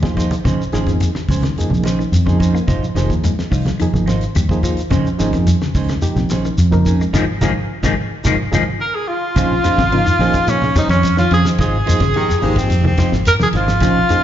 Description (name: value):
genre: afrobeat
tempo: 108 BPM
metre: 4/4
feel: straight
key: Bb dorian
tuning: A4 = 440 Hz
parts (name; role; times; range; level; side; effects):
- reed electric piano; accompaniment; 0.0-14.2 s; F3 to Bb4; -24 LUFS; right 2 dB; fast tremolo, slapback echo
- semi-hollow electric guitar; arpeggios; 0.0-14.0 s; C3 to Bb3; -24 LUFS; left 7 dB; analog chorus, slapback echo
- semi-hollow electric guitar; stabs; 0.0-14.2 s; Db4 to C5; -26 LUFS; right 6 dB; slapback echo
- fingered electric bass; bass; 0.0-14.0 s; F1 to Bb2; -18 LUFS; equal; none
- damped 70s drum kit; drums; 0.0-14.2 s; hi-hat, kick drum, ride cymbal, snare drum; -22 LUFS; equal; none
- congas; percussion; 0.0-14.0 s; none; -24 LUFS; right 2 dB; none
- shekere; percussion; 0.1-14.2 s; none; -21 LUFS; left 1 dB; none
- clear tenor saxophone; melody; 8.8-14.2 s; Db4 to Bb4; -18 LUFS; left 1 dB; slapback echo
- breathy alto saxophone; second line; 8.8-14.2 s; Db4 to Bb4; -24 LUFS; right 4 dB; slapback echo
- bright baritone saxophone; second line; 12.2-13.1 s; Eb3 to C4; -26 LUFS; left 4 dB; slapback echo
room: light reverb, small room ambience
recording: live gig heard through the venue's PA, club reverb, nothing above 7.5 kHz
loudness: -14 LUFS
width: side -11 dB against mid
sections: 0.0-9.4 A section; 9.4-14.2 B section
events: drum fill 0.0-0.5, 8.5-9.4; band accent 7.1-9.4; reed electric piano fill 7.7-9.4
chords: 0.5 Bbm11; 2.7 Ab6; 4.9 Bbm11; 7.1 Ab5; 9.4 Bbm11